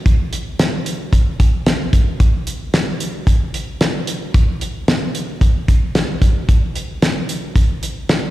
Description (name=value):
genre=pop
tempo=112 BPM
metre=4/4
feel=straight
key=none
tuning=none
part: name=damped 70s drum kit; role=drums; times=0.1-8.2 s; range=hi-hat, kick drum, snare drum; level=-15 LUFS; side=equal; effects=none
room=moderate concert hall reverb, RT60 2.3 s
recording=played on a big sound system in a bare room, large studio reverb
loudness=-15 LUFS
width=side -15 dB against mid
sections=0.0-8.3 A section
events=none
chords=none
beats=| 0.06 0.59 1.13 1.67 | 2.20 2.74 3.27 3.81 | 4.34 4.88 5.42 5.95 | 6.49 7.02 7.56 8.09